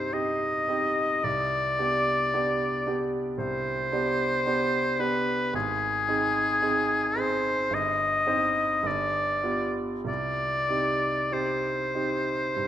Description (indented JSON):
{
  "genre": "classical, romantic duo for oboe and grand piano",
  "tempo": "47-57 BPM",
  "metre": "4/4",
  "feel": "rubato",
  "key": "C minor",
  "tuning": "A4 = 441 Hz",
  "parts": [
    { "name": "bright oboe", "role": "melody", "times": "0.0-12.7 s", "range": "Ab4 to Eb5", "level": "-26 LUFS", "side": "left 2 dB", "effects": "none" },
    { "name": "clear concert grand piano", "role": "accompaniment", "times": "0.0-12.7 s", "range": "G1 to C5", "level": "-29 LUFS", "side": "right 2 dB", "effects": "none" }
  ],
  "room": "moderate scoring stage reverb, RT60 1.9 s",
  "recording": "none",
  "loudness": "-24 LUFS",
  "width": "side -11 dB against mid",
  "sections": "0.0-12.7 A section",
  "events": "none",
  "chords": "0.0 Cm; 1.2 G/C; 5.5 Ab; 7.7 Cm/G; 8.9 G7; 10.1 Cm"
}